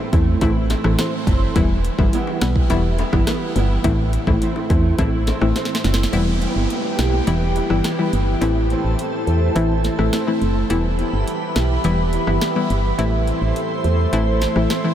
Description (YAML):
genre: dancehall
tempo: 105 BPM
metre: 4/4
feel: straight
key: E minor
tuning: A4 = 440 Hz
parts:
  - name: fingerpicked steel-string acoustic guitar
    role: arpeggios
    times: 0.0-14.9 s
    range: A2 to E4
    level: -26 LUFS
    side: right 4 dB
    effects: ensemble chorus, tape echo
  - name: analog pluck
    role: accompaniment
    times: 0.1-14.9 s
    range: E3 to E4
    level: -22 LUFS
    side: left 2 dB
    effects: chorus
  - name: woody FM bass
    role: bass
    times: 0.1-14.7 s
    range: E1 to E2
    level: -20 LUFS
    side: equal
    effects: none
  - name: afro-pop drum kit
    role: drums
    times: 0.1-14.8 s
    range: hi-hat, kick drum, rim click, snare drum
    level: -24 LUFS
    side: equal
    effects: none
  - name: bongos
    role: percussion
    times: 0.4-6.0 s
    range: none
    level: -32 LUFS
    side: left 7 dB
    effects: none
  - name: glassy FM pad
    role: sustained chords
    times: 6.5-14.9 s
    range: E4 to C6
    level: -24 LUFS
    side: right 1 dB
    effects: ensemble chorus, built-in reverb, sidechain pumping
  - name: downlifter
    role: sound effects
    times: 6.1-10.7 s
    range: none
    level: -31 LUFS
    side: right 1 dB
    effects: none
room: moderate huge ambient reverb, RT60 7.7 s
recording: dreamy mix soaked in reverb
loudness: -16 LUFS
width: side -10 dB against mid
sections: 0.0-6.1 A section; 6.1-14.9 B section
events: drum fill 5.6-6.1; kick muted 6.1-14.9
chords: 0.0 Am; 1.6 Em; 3.8 Am; 6.1 Em; 8.4 Am; 10.7 Em; 13.0 Am